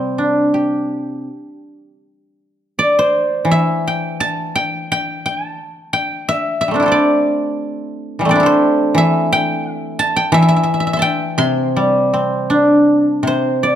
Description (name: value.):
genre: chinese traditional, Chinese solo plucked strings.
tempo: 78-90 BPM.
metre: 4/4.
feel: rubato.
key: C gong mode.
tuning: A4 = 440 Hz.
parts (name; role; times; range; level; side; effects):
guzheng; solo; 0.0-13.8 s; C3 to C6; -14 LUFS; equal; none.
room: moderate recital hall reverb, RT60 1.4 s.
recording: dark, warm production.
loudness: -14 LUFS.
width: side -10 dB against mid.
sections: 0.0-2.0 A section; 2.0-13.3 B section.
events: none.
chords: none.